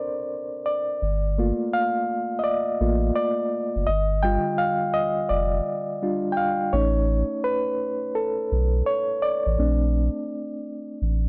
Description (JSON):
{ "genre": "lo-fi hip hop", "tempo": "84 BPM", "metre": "4/4", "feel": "swing 64% on 16ths", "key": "G minor", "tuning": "A4 = 445 Hz", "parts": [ { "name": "reed electric piano", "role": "accompaniment", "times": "0.0-11.3 s", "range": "D3 to G5", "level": "-23 LUFS", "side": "equal", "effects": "fast tremolo" }, { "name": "warm sub bass", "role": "bass", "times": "1.0-11.3 s", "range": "F1 to B1", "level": "-22 LUFS", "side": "equal", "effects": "none" } ], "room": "little or no reverb", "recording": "dark, warm production", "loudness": "-21 LUFS", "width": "side -32 dB against mid", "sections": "0.0-11.3 A section", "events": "reed electric piano solo 0.0-11.3", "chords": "0.0 Bbmaj9; 1.0 Gm9; 3.9 Ebmaj9; 6.7 Aadd9; 9.6 Bbmaj9", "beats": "0.30 | 1.01 1.73 2.44 3.16 | 3.87 4.59 5.30 6.01 | 6.73 7.44 8.16 8.87 | 9.59 10.30 11.02" }